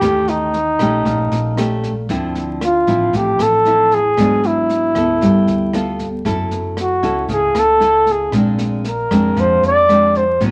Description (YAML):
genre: bossa nova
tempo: 116 BPM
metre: 4/4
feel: straight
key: unclear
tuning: A4 = 440 Hz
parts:
  - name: mellow flugelhorn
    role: melody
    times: 0.0-10.4 s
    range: D#4 to D5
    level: -17 LUFS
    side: equal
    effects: none
  - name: nylon-string guitar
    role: accompaniment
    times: 0.0-10.5 s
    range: G#2 to A4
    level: -21 LUFS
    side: equal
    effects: none
  - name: hollow-body short-scale fingered electric bass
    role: bass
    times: 0.0-10.5 s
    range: F#1 to F2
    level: -28 LUFS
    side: equal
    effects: none
  - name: jazz brush drum kit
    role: drums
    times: 0.0-10.5 s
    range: kick drum, rim click, snare drum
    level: -30 LUFS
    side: equal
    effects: none
room: light reverb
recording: vinyl crackle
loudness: -16 LUFS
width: mono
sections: 0.0-10.5 A section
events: none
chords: 0.0 D#7#11; 2.1 Dm9; 4.2 G#m7b5; 5.2 G9; 6.3 F#m7; 8.3 Bb9